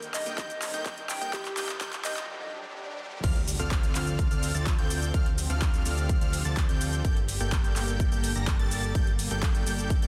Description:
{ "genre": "EDM, festival progressive house", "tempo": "126 BPM", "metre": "4/4", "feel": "straight", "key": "unclear", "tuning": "A4 = 440 Hz", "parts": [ { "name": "soft struck synth lead", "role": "melody", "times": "0.0-2.3 s", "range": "G4 to G5", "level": "-39 LUFS", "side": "equal", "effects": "chorus, digital delay" }, { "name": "supersaw pad", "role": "sustained chords", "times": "0.0-10.1 s", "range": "C3 to A4", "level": "-44 LUFS", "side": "equal", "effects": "sidechain pumping" }, { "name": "unison lead", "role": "arpeggios", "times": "0.0-10.1 s", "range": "F6 to Bb6", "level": "-41 LUFS", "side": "equal", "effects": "subtle chorus, sidechain pumping, digital delay" }, { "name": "dense compressed supersaw", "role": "riff", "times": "0.0-10.1 s", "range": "Bb3 to Bb5", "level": "-39 LUFS", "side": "equal", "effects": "sidechain pumping, digital delay" }, { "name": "big-room dance drum kit", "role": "drums", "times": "0.0-10.1 s", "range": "crash cymbal, handclaps, hi-hat, shaker", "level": "-37 LUFS", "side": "equal", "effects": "overdrive" }, { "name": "riser, swell and impact", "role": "sound effects", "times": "0.2-5.1 s", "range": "none", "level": "-42 LUFS", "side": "equal", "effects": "none" }, { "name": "electronic kick drum", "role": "drums", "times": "0.4-10.0 s", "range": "none", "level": "-29 LUFS", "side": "equal", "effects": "overdrive" }, { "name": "fat analog bass", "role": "bass", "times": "3.2-10.1 s", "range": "G1 to D2", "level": "-33 LUFS", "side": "equal", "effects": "sidechain pumping" } ], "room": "light reverb", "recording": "dense, heavily limited modern master, high-pass filter", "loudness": "-28 LUFS", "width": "mono", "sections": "0.0-3.2 A section; 3.2-10.1 B section", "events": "build-up 0.0-3.2; drum fill 0.0-2.3; riser 0.2-3.2; break 2.3-3.2; swell 2.3-3.2; drop 3.2-10.1; impact 3.2-5.1", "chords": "0.0 Cmadd9; 3.2 Dm7; 7.0 Gmadd9", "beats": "0.38 0.86 | 1.33 1.81 2.29 2.76 | 3.24 3.71 4.19 4.67 | 5.14 5.62 6.09 6.57 | 7.05 7.52 8.00 8.48 | 8.95 9.43 9.90" }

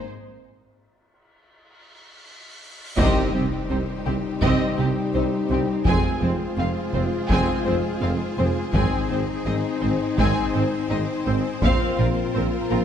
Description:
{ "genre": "cinematic, epic orchestral film score", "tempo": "83 BPM", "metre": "4/4", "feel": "straight", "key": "unclear", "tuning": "A4 = 439 Hz", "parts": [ { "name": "warm symphonic violin section", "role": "melody", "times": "0.0-12.8 s", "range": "G4 to Ab5", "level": "-31 LUFS", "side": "left 3 dB", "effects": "none" }, { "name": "mellow French horn section", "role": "sustained chords", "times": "0.0-12.8 s", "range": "G3 to F4", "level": "-28 LUFS", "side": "left 5 dB", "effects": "none" }, { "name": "cymbal swell and impact", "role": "sound effects", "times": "2.0-5.9 s", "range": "none", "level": "-36 LUFS", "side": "equal", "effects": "none" }, { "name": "rich studio violin section", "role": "second line", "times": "3.0-12.8 s", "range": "C4 to C5", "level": "-33 LUFS", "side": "left 2 dB", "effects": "none" }, { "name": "clear studio viola section", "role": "accompaniment", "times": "3.0-12.8 s", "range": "C4", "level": "-30 LUFS", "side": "right 1 dB", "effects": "none" }, { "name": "rich symphonic string section", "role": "sustained chords", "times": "3.0-12.8 s", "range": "C4 to C5", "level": "-31 LUFS", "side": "left 1 dB", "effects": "none" }, { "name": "mellow tuba", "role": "bass", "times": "3.0-12.8 s", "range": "F1 to C2", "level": "-28 LUFS", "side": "right 3 dB", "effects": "none" }, { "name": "rich symphonic cello section", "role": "bass", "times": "3.0-12.8 s", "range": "F2 to C3", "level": "-29 LUFS", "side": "right 2 dB", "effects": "none" }, { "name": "rich symphonic double bass section", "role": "bass", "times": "3.0-12.8 s", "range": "F1 to C2", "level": "-29 LUFS", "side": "right 2 dB", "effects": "none" }, { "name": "taiko ensemble", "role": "drums", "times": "3.0-12.3 s", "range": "none", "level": "-25 LUFS", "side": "equal", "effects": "none" } ], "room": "moderate scoring stage reverb, RT60 1.5 s", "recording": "dark, warm production", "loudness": "-20 LUFS", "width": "side -9 dB against mid", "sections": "0.0-3.0 A section; 3.0-12.8 B section", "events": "break 0.1-3.0; cymbal swell 2.0-3.0; band accent 3.0-3.7; impact 3.0-5.9", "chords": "0.1 N.C.; 3.0 Cm; 5.9 Fm; 8.7 Ab; 11.6 Bbsus2", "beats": "| 0.10 0.82 1.54 2.26 | 2.98 3.70 4.42 5.14 | 5.86 6.58 7.30 8.02 | 8.74 9.46 10.19 10.91 | 11.63 12.35" }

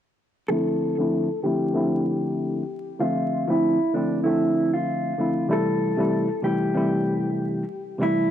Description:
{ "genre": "hip hop", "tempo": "96 BPM", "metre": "4/4", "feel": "swing 55% on 16ths", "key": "D minor", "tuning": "A4 = 440 Hz", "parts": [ { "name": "mellow electric guitar", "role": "melody", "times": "0.5-8.3 s", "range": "D4 to A4", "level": "-25 LUFS", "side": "equal", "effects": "high-pass filter, low-pass filter" }, { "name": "tine electric piano", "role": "accompaniment", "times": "0.5-8.3 s", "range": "C3 to E5", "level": "-23 LUFS", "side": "equal", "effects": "cassette tape, high-pass filter, low-pass filter" } ], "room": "light reverb", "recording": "dry, gritty hardware recording, vinyl crackle", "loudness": "-21 LUFS", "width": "side -10 dB against mid", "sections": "0.5-8.3 A section", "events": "none", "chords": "0.5 Dm9; 5.5 Am7", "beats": "| 0.50 1.13 1.75 2.38 | 3.00 3.63 4.25 4.88 | 5.50 6.13 6.75 7.38 | 8.00" }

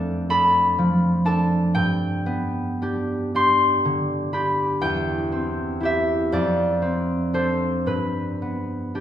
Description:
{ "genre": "classical, solo harp piece", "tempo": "36-43 BPM (dotted quarters)", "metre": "6/8", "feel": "rubato", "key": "unclear", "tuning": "A4 = 440 Hz", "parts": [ { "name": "concert harp", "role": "solo", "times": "0.0-9.0 s", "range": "E2 to C6", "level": "-20 LUFS", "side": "equal", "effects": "none" } ], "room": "wet recital hall reverb, RT60 1.5 s", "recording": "heard from further back in the room", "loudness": "-20 LUFS", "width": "side -10 dB against mid", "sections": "0.0-9.0 A section", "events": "none", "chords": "0.0 Dm/F; 1.8 G; 4.8 C/E; 6.3 Dm7/F; 7.9 G", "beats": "0.31 | 1.75 3.35 | 4.80 6.31 | 7.87" }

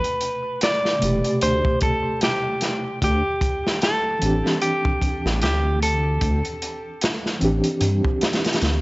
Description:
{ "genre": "trip hop", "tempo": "75 BPM", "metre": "4/4", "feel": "swing 57% on 16ths", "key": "unclear", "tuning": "A4 = 440 Hz", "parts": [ { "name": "clean electric guitar", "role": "melody", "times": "0.0-8.6 s", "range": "G4 to D5", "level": "-23 LUFS", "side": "equal", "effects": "vintage 12-bit sampler grit, tape echo" }, { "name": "mellow reed electric piano", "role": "accompaniment", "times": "0.0-8.8 s", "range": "B2 to G4", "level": "-25 LUFS", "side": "equal", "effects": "fast tremolo, tape echo" }, { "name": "crunchy breakbeat drum kit", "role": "drums", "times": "0.0-8.8 s", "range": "hi-hat, kick drum, snare drum", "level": "-24 LUFS", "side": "equal", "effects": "none" }, { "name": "dark detuned saw bass", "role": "bass", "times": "1.0-8.8 s", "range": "E1 to G2", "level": "-22 LUFS", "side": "equal", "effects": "none" } ], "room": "light reverb, small room ambience", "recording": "dry, gritty hardware recording, vinyl crackle, nothing above 7.8 kHz", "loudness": "-19 LUFS", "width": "side -23 dB against mid", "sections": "0.0-8.8 A section", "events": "filter sweep on reed electric piano 0.0-8.8", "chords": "0.0 Am9; 3.0 D9sus4", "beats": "0.61 1.41 2.21 | 3.01 3.81 4.61 5.41 | 6.21 7.01 7.81 8.61" }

